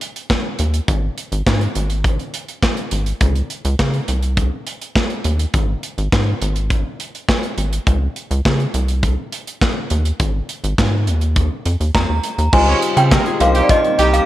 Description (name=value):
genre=early-eighties boogie funk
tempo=103 BPM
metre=4/4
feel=straight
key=unclear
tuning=A4 = 437 Hz
part: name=modern studio drum kit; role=drums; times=0.0-14.3 s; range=crash cymbal, handclaps, hi-hat, kick drum, snare drum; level=-19 LUFS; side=equal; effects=gated reverb
part: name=rubbery square bass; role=bass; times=0.6-14.2 s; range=Ab1 to Db3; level=-17 LUFS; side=equal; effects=none
part: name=synth chime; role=melody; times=11.9-14.3 s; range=D5 to Bb5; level=-17 LUFS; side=equal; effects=ensemble chorus
part: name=clear grand piano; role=accompaniment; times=12.5-14.3 s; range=G3 to C5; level=-21 LUFS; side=left 4 dB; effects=none
part: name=soft string machine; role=sustained chords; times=12.8-14.3 s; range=C3 to F4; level=-26 LUFS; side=right 2 dB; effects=phaser, ensemble chorus
part: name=mellow horn section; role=second line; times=12.7-14.2 s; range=F3 to Db5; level=-20 LUFS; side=right 3 dB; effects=none
room=light reverb, small room reverb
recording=none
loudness=-15 LUFS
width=side -14 dB against mid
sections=0.0-12.5 A section; 12.5-14.3 B section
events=none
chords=0.0 N.C.; 4.1 Cm; 5.5 N.C.; 8.7 Cm; 10.2 N.C.; 11.1 Ebsus2; 12.5 Dbmaj9#11; 13.4 Cm7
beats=0.30 | 0.88 1.46 2.04 2.63 | 3.21 3.79 4.38 4.96 | 5.54 6.12 6.71 7.29 | 7.87 8.45 9.04 9.62 | 10.20 10.78 11.37 11.95 | 12.53 13.11 13.70